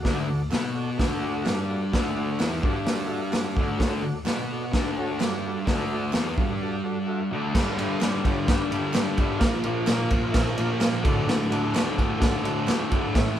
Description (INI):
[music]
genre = garage rock duo or trio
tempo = 128 BPM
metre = 4/4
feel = straight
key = D major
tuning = A4 = 437 Hz
[part]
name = combo organ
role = sustained chords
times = 0.0-13.3 s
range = E4 to E5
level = -34 LUFS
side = right 1 dB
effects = none
[part]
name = fuzz guitar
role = riff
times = 0.0-13.4 s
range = D2 to B3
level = -26 LUFS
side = equal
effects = distortion
[part]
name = raw garage drum kit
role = drums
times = 0.0-13.3 s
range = crash cymbal, hi-hat, kick drum, ride cymbal, snare drum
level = -26 LUFS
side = equal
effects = none
[part]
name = group handclap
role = percussion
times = 0.5-12.8 s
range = none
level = -42 LUFS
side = right 3 dB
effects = none
[sound]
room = moderate large studio reverb, RT60 1.1 s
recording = band playing live in one room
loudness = -22 LUFS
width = side -10 dB against mid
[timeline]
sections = 0.0-7.5 A section; 7.5-13.4 B section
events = break 6.6-7.5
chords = 0.0 D; 7.5 G; 9.4 Bb; 11.0 D